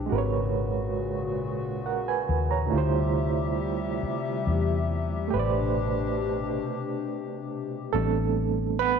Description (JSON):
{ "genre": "R&B", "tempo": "46 BPM (dotted quarters)", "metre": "6/8", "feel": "straight", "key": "A minor", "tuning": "A4 = 441 Hz", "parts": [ { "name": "overdriven reed electric piano", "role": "accompaniment", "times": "0.0-9.0 s", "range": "D3 to A#5", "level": "-28 LUFS", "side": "right 9 dB", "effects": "medium tremolo" }, { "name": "hollow soft pad", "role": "sustained chords", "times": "0.0-7.9 s", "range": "A#2 to E5", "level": "-32 LUFS", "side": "left 6 dB", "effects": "chorus" }, { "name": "vintage muted fingered electric bass", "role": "bass", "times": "0.0-9.0 s", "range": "G#1 to E2", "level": "-28 LUFS", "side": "left 2 dB", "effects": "none" } ], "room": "moderate echo chamber reverb, RT60 1.8 s", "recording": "none", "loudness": "-25 LUFS", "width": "side -6 dB against mid", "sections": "0.0-7.9 A section; 7.9-9.0 B section", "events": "break 6.6-7.9; reed electric piano solo 7.9-9.0", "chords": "0.1 G#m11; 2.7 Dm11; 5.3 Am11" }